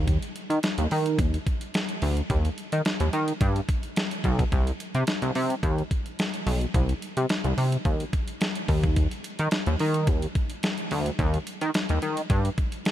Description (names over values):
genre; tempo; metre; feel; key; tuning
early-eighties boogie funk; 108 BPM; 4/4; straight; C minor; A4 = 440 Hz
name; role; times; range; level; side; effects
chorused synth bass; bass; 0.0-12.5 s; B1 to Eb3; -24 LUFS; equal; none
detuned 8-bit digital drum machine; drums; 0.1-12.9 s; hi-hat, kick drum, snare drum; -27 LUFS; equal; none
room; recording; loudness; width
light reverb; none; -24 LUFS; side -12 dB against mid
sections
0.0-12.9 A section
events
none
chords
none